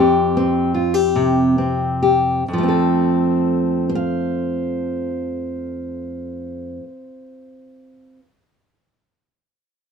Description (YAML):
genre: folk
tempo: 42-53 BPM (dotted quarters)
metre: 6/8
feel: straight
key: F major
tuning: A4 = 440 Hz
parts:
  - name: fingerpicked steel-string acoustic guitar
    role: solo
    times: 0.0-8.3 s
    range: F2 to F5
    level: -17 LUFS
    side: left 1 dB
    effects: none
room: light reverb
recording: minimal, uncompressed stereo recording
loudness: -17 LUFS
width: side -6 dB against mid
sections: 0.0-2.5 A section; 2.5-8.2 B section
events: slowing down 0.0-2.5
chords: 0.0 Fsus2; 2.5 F